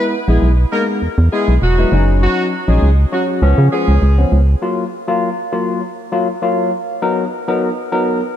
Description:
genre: dance-pop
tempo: 100 BPM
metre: 4/4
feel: straight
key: F# major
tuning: A4 = 436 Hz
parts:
  - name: warm horn section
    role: melody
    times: 0.0-4.2 s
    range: F#3 to A#4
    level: -20 LUFS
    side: equal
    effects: ping-pong delay
  - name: barky tine electric piano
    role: accompaniment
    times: 0.0-8.2 s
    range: E#3 to A#4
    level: -17 LUFS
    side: left 2 dB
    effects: lush chorus
  - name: organ-like FM bass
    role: bass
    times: 0.3-4.6 s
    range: E1 to C#3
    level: -11 LUFS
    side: equal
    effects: none
room: light reverb, small room ambience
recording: none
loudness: -13 LUFS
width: side -10 dB against mid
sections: 0.0-4.6 A section; 4.6-8.4 B section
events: build-up 4.6-8.4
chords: 0.0 E; 1.9 D#m7/F#; 3.4 C#7; 4.6 F#maj7; 7.0 Bmaj7/F#

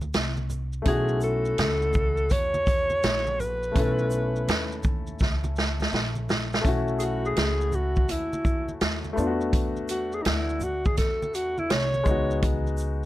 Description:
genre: hip hop, jazz-hop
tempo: 83 BPM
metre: 4/4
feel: swing 66% on 16ths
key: unclear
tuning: A4 = 440 Hz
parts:
  - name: upright bass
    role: bass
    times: 0.0-13.1 s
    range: A#1 to E2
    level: -30 LUFS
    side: equal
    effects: none
  - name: congas and maracas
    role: percussion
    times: 0.0-13.0 s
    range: none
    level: -39 LUFS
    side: right 2 dB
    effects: none
  - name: vintage drum kit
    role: drums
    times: 0.1-13.0 s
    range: hi-hat, kick drum, shaker, snare drum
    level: -26 LUFS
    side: equal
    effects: none
  - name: warm upright piano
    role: accompaniment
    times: 0.8-13.1 s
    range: G#3 to A4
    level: -31 LUFS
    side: left 3 dB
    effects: none
  - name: dark alto saxophone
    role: melody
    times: 0.9-12.4 s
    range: D#4 to C#5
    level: -27 LUFS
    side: equal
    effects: none
room: little or no reverb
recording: none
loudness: -23 LUFS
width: side -15 dB against mid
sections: 0.0-6.6 A section; 6.6-13.1 B section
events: break 0.0-0.9; drum fill 5.2-6.6; alto saxophone solo 6.6-13.1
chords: 0.0 Gsus4 (rootless); 0.9 B9sus4; 9.2 E9sus4; 12.1 C#9sus4

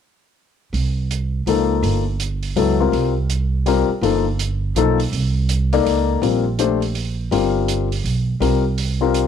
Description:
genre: modal jazz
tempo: 164 BPM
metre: 3/4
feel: swing 64% on 8ths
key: C dorian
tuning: A4 = 440 Hz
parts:
  - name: upright bass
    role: bass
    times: 0.7-9.3 s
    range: G1 to Db2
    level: -20 LUFS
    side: right 2 dB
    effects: none
  - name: hi-hat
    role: drums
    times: 0.7-9.3 s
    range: none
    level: -30 LUFS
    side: right 10 dB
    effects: none
  - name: dark concert grand piano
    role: accompaniment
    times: 1.5-9.3 s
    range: F3 to D5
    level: -18 LUFS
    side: left 9 dB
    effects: none
room: light reverb, small room ambience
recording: 1960s-style stereo with parts hard left and right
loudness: -17 LUFS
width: side -8 dB against mid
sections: 0.7-9.3 A section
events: none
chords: 0.7 Cm7; 5.1 Ebadd9 (rootless)

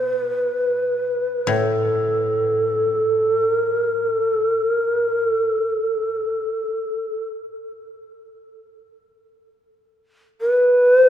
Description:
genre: japanese traditional, Japanese chamber music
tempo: free time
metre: none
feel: none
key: unclear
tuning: A4 = 439 Hz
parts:
  - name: mellow long shakuhachi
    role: melody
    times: 0.0-11.1 s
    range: A4 to B4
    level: -18 LUFS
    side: equal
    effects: none
  - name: koto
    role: accompaniment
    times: 0.0-4.8 s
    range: A2 to B2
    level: -27 LUFS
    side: left 1 dB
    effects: none
room: moderate cathedral reverb, RT60 5.2 s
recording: minimal, uncompressed stereo recording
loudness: -18 LUFS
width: side -10 dB against mid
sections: 0.0-11.1 A section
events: none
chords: none

